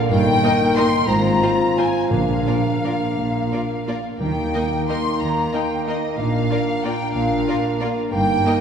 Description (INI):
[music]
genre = classical, orchestral ballroom waltz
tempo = 162-202 BPM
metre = 3/4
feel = rubato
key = unclear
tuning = A4 = 440 Hz
[part]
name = mellow clarinet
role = second line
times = 0.0-8.6 s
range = D4 to Bb4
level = -26 LUFS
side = equal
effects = none
[part]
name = mellow bassoon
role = accompaniment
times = 0.0-8.6 s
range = D3 to Bb3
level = -26 LUFS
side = equal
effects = none
[part]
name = dark French horn section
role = sustained chords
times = 0.0-8.6 s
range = Bb3 to F4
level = -26 LUFS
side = left 2 dB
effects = none
[part]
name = rich studio violin section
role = melody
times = 0.1-8.6 s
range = Eb5 to C6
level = -27 LUFS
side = left 3 dB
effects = none
[part]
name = flute section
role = second line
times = 0.1-8.6 s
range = Eb5 to C6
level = -26 LUFS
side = equal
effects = none
[part]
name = rich symphonic cello section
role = bass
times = 0.1-8.4 s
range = G2 to Eb3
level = -27 LUFS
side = right 1 dB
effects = none
[part]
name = warm symphonic double bass section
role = bass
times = 0.1-8.4 s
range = G1 to Eb2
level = -27 LUFS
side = right 3 dB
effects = none
[part]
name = rich symphonic violin section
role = second line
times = 0.4-8.5 s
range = F4 to Eb5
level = -33 LUFS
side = left 3 dB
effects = none
[part]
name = clear symphonic viola section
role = accompaniment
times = 0.4-8.5 s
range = Bb3 to F4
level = -30 LUFS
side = right 1 dB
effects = none
[part]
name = timpani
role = percussion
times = 2.1-4.7 s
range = Bb2 to Eb3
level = -28 LUFS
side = left 2 dB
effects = none
[sound]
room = wet church reverb, RT60 2.9 s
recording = recorded in a church or concert hall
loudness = -17 LUFS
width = side -7 dB against mid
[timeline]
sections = 0.0-8.6 A section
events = none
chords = 0.1 Eb/G; 1.1 Fm/Ab; 2.1 Bb; 4.2 Eb; 6.2 Bb